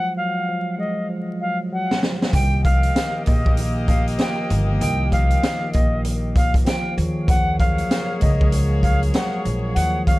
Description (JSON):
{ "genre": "hip hop, boom-bap hip-hop", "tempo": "97 BPM", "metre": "4/4", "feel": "swing 62% on 16ths", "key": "unclear", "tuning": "A4 = 442 Hz", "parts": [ { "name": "silver concert flute", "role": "melody", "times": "0.0-10.2 s", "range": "Eb5 to G5", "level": "-25 LUFS", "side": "left 1 dB", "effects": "high-pass filter, low-pass filter, tape echo" }, { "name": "mellow tine electric piano", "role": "accompaniment", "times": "0.0-10.2 s", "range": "Eb3 to Bb3", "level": "-27 LUFS", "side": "equal", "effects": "medium stereo tremolo, cassette tape, high-pass filter, low-pass filter, tape echo" }, { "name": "raw garage drum kit", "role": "drums", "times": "1.9-10.2 s", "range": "hi-hat, kick drum, snare drum", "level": "-20 LUFS", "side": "equal", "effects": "none" }, { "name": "warm horn section", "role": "stabs", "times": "2.3-10.2 s", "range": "Bb3 to Eb5", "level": "-30 LUFS", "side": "left 2 dB", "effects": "high-pass filter, low-pass filter, tape echo" }, { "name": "upright bass", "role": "bass", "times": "2.3-10.2 s", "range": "G1 to Eb2", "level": "-21 LUFS", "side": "equal", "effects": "none" } ], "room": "small room ambience", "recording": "echo-heavy mix, vinyl crackle", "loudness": "-18 LUFS", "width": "side -19 dB against mid", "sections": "0.0-10.2 A section", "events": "drum fill 1.1-2.3", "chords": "0.0 Ebmadd9/F (rootless); 2.3 Cm7; 7.0 Ebm11", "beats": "0.48 1.10 1.71 | 2.33 2.95 3.57 4.19 | 4.81 5.43 6.04 6.66 | 7.28 7.90 8.52 9.14 | 9.76" }